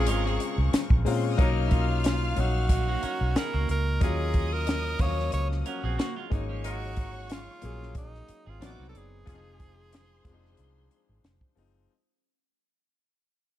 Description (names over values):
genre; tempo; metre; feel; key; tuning
lush 1970s-style soul; 91 BPM; 4/4; swing 54% on 16ths; unclear; A4 = 440 Hz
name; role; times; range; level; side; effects
bright tenor saxophone; melody; 0.0-11.3 s; Eb4 to Db5; -35 LUFS; right 3 dB; none
rich studio violin section; second line; 0.0-11.5 s; Bb4 to F6; -40 LUFS; left 2 dB; none
clear grand piano; accompaniment; 0.0-11.9 s; Db3 to F5; -33 LUFS; left 7 dB; none
clean electric guitar; riff; 0.0-9.3 s; F3 to A#4; -38 LUFS; right 6 dB; none
vintage muted fingered electric bass; bass; 0.0-11.9 s; F1 to Bb2; -28 LUFS; equal; none
compact cocktail drum kit; drums; 0.1-11.7 s; hi-hat, kick drum, snare drum; -27 LUFS; equal; none
clear horn section; stabs; 1.4-9.7 s; F3 to Bb4; -39 LUFS; equal; none
room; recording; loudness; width
small room reverb; none; -24 LUFS; side -13 dB against mid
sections
0.0-11.9 A section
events
fade-out 0.0-11.9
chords
0.0 Bbm9; 1.4 Bmaj7; 4.0 Ebm7; 6.3 Ab9sus4; 8.6 Adim7; 9.3 Fm7